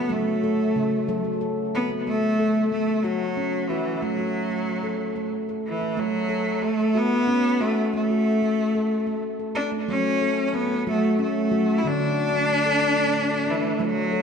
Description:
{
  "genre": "world meditative",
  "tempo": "61 BPM (dotted quarters)",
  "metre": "6/8",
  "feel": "straight",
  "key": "F# minor",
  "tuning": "A4 = 438 Hz",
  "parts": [
    { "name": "bright cello", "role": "melody", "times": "0.0-14.2 s", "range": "E3 to E4", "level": "-23 LUFS", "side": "equal", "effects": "diffuse ambient delay" },
    { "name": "handpan", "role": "arpeggios", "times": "0.0-14.2 s", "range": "C#3 to A4", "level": "-25 LUFS", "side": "equal", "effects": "diffuse ambient delay" }
  ],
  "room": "wet scoring stage reverb, RT60 1.6 s, small room ambience",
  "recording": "none",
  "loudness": "-21 LUFS",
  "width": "side -6 dB against mid",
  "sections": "0.0-2.1 A section; 2.1-14.2 B section",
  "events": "none",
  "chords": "0.0 F#m; 4.0 Esus4 (rootless); 6.0 F#m; 7.9 N.C.; 9.9 F#m; 11.8 D",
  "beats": "| 0.11 1.09 | 2.06 3.04 | 4.02 5.00 | 5.97 6.95 | 7.93 8.91 | 9.89 10.87 | 11.85 12.83 | 13.80"
}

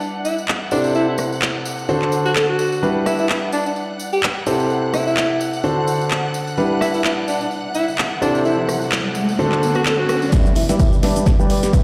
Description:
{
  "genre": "piano house",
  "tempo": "128 BPM",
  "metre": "4/4",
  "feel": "swing 56% on 16ths",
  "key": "G major",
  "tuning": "A4 = 440 Hz",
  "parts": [
    { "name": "warm studio string section", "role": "sustained chords", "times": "0.0-11.8 s", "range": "D5 to F#6", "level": "-32 LUFS", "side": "equal", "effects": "sidechain pumping, low-pass filter" },
    { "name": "clear concert grand piano", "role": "riff", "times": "0.0-11.8 s", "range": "C3 to G5", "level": "-23 LUFS", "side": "equal", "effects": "sidechain pumping, low-pass filter, tape echo" },
    { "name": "tambourine", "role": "percussion", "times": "0.0-10.3 s", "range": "none", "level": "-37 LUFS", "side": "equal", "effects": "none" },
    { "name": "breathy alto saxophone", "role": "melody", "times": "0.2-11.7 s", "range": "D4 to A4", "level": "-24 LUFS", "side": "equal", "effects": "low-pass filter, tape echo" },
    { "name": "house drum kit", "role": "drums", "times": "0.5-11.8 s", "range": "cabasa, handclaps, hi-hat, rim click, snare drum", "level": "-26 LUFS", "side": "equal", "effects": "high-pass filter on snare, high-pass filter on hats, high-pass filter on perc" },
    { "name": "riser", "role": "sound effects", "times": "8.0-11.8 s", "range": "none", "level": "-29 LUFS", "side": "equal", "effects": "none" },
    { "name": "solid FM bass", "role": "bass", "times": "10.3-11.4 s", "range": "E1 to G1", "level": "-32 LUFS", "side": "equal", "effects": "none" },
    { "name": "deep reggae drum kit", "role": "drums", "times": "10.3-11.8 s", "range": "hi-hat, snare drum, tambourine", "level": "-40 LUFS", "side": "equal", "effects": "sidechain pumping on hats, high-pass filter on hats, high-pass filter on snare, sidechain pumping on perc, high-pass filter on perc, high-pass filter on room" },
    { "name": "electronic kick drum", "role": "drums", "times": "10.3-11.8 s", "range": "none", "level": "-18 LUFS", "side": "equal", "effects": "none" }
  ],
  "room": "moderate plate reverb, RT60 1.8 s, small room ambience",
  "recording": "played on a big sound system in a bare room, stone room reverb",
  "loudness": "-19 LUFS",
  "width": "mono",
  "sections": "0.0-10.3 A section; 10.3-11.8 B section",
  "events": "riser 8.0-10.3; build-up 10.3-11.8; drum fill 10.3-11.8; filter sweep on alto saxophone 10.3-11.8",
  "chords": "0.0 G6; 0.7 C6; 1.9 D7; 2.8 G6; 4.5 C6; 5.6 D7; 6.6 G6; 8.2 C6; 9.4 D7; 10.3 G6",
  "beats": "0.01 0.48 | 0.95 1.42 1.89 2.36 | 2.83 3.30 3.76 4.23 | 4.70 5.17 5.64 6.11 | 6.58 7.05 7.51 7.98 | 8.45 8.92 9.39 9.86 | 10.33 10.80 11.26 11.73"
}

